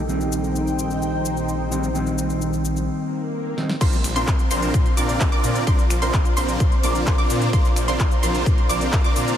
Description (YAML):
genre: EDM, festival progressive house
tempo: 129 BPM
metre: 4/4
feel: straight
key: Bb major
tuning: A4 = 440 Hz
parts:
  - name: lush unison pad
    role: sustained chords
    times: 0.0-9.4 s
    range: Eb4 to Bb5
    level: -29 LUFS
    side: left 1 dB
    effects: chorus, phaser, vintage 12-bit sampler grit, sidechain pumping
  - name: wide detuned saw bass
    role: bass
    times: 0.0-9.3 s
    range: Bb1 to Bb2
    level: -26 LUFS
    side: equal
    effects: chorus, tube saturation, sidechain pumping
  - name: mellow electric guitar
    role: accompaniment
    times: 0.1-3.7 s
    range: Eb3 to Eb4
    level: -26 LUFS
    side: right 1 dB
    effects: sidechain pumping, tape echo
  - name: big-room dance drum kit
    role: drums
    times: 0.1-9.4 s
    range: crash cymbal, finger snaps, handclaps, hi-hat, ride cymbal, shaker, snare drum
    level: -29 LUFS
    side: left 1 dB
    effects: overdrive
  - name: swell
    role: sound effects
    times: 3.0-3.8 s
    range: none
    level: -37 LUFS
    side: left 1 dB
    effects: none
  - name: wide unison pluck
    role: arpeggios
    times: 3.8-9.4 s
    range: C6 to D6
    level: -28 LUFS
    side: right 1 dB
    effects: lush chorus, sidechain pumping, tape echo
  - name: dense compressed supersaw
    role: riff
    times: 3.8-9.4 s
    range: C4 to D5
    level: -25 LUFS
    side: right 1 dB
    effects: sidechain pumping, tape echo
  - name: electronic kick drum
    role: drums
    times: 3.8-9.0 s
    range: none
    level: -19 LUFS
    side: equal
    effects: overdrive
room: moderate huge ambient reverb, RT60 7.3 s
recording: dreamy mix soaked in reverb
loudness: -18 LUFS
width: side -10 dB against mid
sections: 0.0-3.8 A section; 3.8-9.4 B section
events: break 2.9-3.8; swell 3.0-3.8; drum fill 3.6; drop 3.8-9.4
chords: 0.1 Cm/Bb; 3.8 Bbadd9